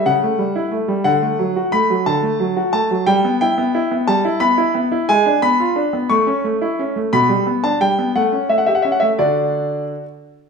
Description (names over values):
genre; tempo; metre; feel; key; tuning
classical-period piano sonatina; 60 BPM (dotted quarters); 6/8; straight; D major; A4 = 440 Hz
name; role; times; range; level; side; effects
bright concert grand piano; solo; 0.0-10.0 s; B2 to C#6; -15 LUFS; equal; none
room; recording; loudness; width
moderate recital hall reverb, RT60 1.4 s; minimal, uncompressed stereo recording; -15 LUFS; side -5 dB against mid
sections
0.0-10.5 A section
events
none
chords
0.0 A7/C#; 1.1 D; 3.1 Em/G; 5.1 G#dim7; 6.1 A; 7.1 G/B; 8.2 A7; 9.2 D